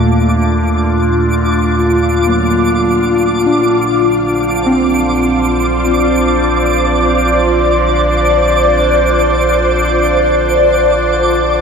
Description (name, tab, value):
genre	ambient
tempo	free time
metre	none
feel	none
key	unclear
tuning	A4 = 440 Hz
part	ethereal airy pad	sustained chords	0.0-11.6 s	Bb2 to D5	-13 LUFS	left 1 dB	ensemble chorus, built-in reverb, phaser
part	muted felt-like synth keys	arpeggios	0.0-11.6 s	Gb3 to D4	-18 LUFS	right 1 dB	chorus, ping-pong delay
part	warm sub bass	bass	0.0-11.6 s	Bb1 to Eb2	-18 LUFS	equal	none
part	overtone-sweeping drone	drone	0.0-11.6 s	D3 to D4	-22 LUFS	equal	chorus, built-in reverb
part	twinkling granular texture	texture	0.0-11.6 s	D6	-19 LUFS	right 2 dB	built-in reverb
room	wet concert hall reverb, RT60 1.9 s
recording	none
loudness	-10 LUFS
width	side -6 dB against mid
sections	0.0-11.6 A section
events	filter sweep on ambient pad 0.0-11.6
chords	0.0 Ebm; 3.6 Bb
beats	free time